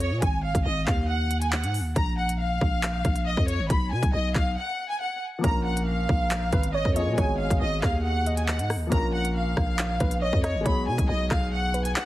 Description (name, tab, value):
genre	hip hop, drill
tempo	138 BPM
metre	4/4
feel	half-time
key	Bb phrygian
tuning	A4 = 441 Hz
part	warm symphonic violin section	melody	0.0-12.1 s	Db5 to B5	-29 LUFS	equal	none
part	growling 808-style bass	bass	0.0-11.9 s	Ab1 to B2	-27 LUFS	equal	none
part	drill drum kit	drums	0.0-12.1 s	handclaps, hi-hat, kick drum, rim click	-26 LUFS	equal	none
part	soft round pluck	second line	5.4-11.9 s	Bb4 to Eb5	-33 LUFS	right 2 dB	chorus
part	warm baby grand piano	accompaniment	5.4-12.1 s	F3 to Bb4	-33 LUFS	left 3 dB	none
room	digital ambience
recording	heavily compressed radio sound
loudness	-23 LUFS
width	side -16 dB against mid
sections	0.0-12.1 A section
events	break 4.6-5.4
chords	0.2 Ab5; 2.0 Bb5; 3.7 B5; 5.4 Bbm; 7.2 Abm7; 8.9 Bbm; 10.7 B6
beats	| 0.22 0.66 1.09 1.53 | 1.96 2.40 2.83 3.27 | 3.70 4.13 4.57 5.00 | 5.44 5.87 6.31 6.74 | 7.18 7.61 8.05 8.48 | 8.92 9.35 9.79 10.22 | 10.66 11.09 11.53 11.96